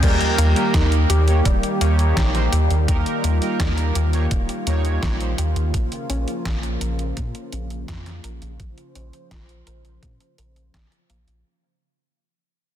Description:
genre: synthwave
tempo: 84 BPM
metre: 4/4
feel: straight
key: Bb dorian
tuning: A4 = 439 Hz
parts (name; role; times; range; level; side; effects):
- warm analog pad; sustained chords; 0.0-11.4 s; Db3 to C5; -26 LUFS; equal; chorus, sidechain pumping
- analog pluck; arpeggios; 0.0-11.3 s; G3 to F5; -30 LUFS; left 4 dB; chorus, digital delay
- analog synth brass; stabs; 0.0-5.3 s; Bb3 to Db5; -27 LUFS; right 3 dB; chorus, digital delay
- round analog bass; bass; 0.0-11.4 s; Eb1 to Bb2; -20 LUFS; equal; none
- detuned 8-bit digital drum machine; drums; 0.0-11.4 s; crash cymbal, hi-hat, snare drum; -27 LUFS; equal; none
- electronic kick drum; drums; 0.0-10.9 s; none; -23 LUFS; equal; none
room: light reverb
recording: dense, heavily limited modern master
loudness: -18 LUFS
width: side -10 dB against mid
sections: 0.0-11.5 A section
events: fade-out 0.0-11.5; filter sweep on analog synth pad 0.0-11.5; filter sweep on synth arpeggio sound 0.0-11.5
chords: 0.0 Eb; 5.7 Bbm

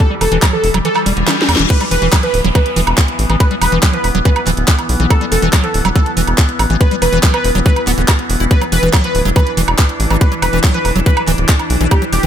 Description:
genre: psychedelic trance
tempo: 141 BPM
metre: 4/4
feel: straight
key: E minor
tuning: A4 = 440 Hz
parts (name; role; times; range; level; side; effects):
- wide unison lead; melody; 0.0-12.3 s; G4 to B4; -20 LUFS; equal; phaser, sidechain pumping, ping-pong delay
- overtone-sweeping drone; sustained chords; 0.0-12.3 s; E3 to D4; -21 LUFS; equal; chorus, built-in reverb, sidechain pumping
- liquid acid bass; riff; 0.0-12.3 s; D3 to F#4; -20 LUFS; moving between left 5 dB and right 4 dB; chorus, auto-pan, sidechain pumping, dub echo
- electronic kick drum; drums; 0.0-12.0 s; none; -11 LUFS; equal; overdrive, small room reverb
- garage drum kit; drums; 0.0-12.3 s; crash cymbal, handclaps, hi-hat, snare drum, woodblock; -18 LUFS; right 2 dB; overdrive, small room reverb
- tight sequencer bass; bass; 0.2-12.3 s; D1 to E2; -16 LUFS; equal; tube saturation
- reverse cymbal and downlifter; sound effects; 1.0-5.1 s; none; -25 LUFS; left 3 dB; none
room: little or no reverb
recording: none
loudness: -11 LUFS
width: side -9 dB against mid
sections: 0.0-1.7 A section; 1.7-12.3 B section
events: kick drops out 0.8-1.7; reverse cymbal 1.0-1.7; drum fill 1.3-1.7; drop 1.7-12.3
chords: 0.0 E5

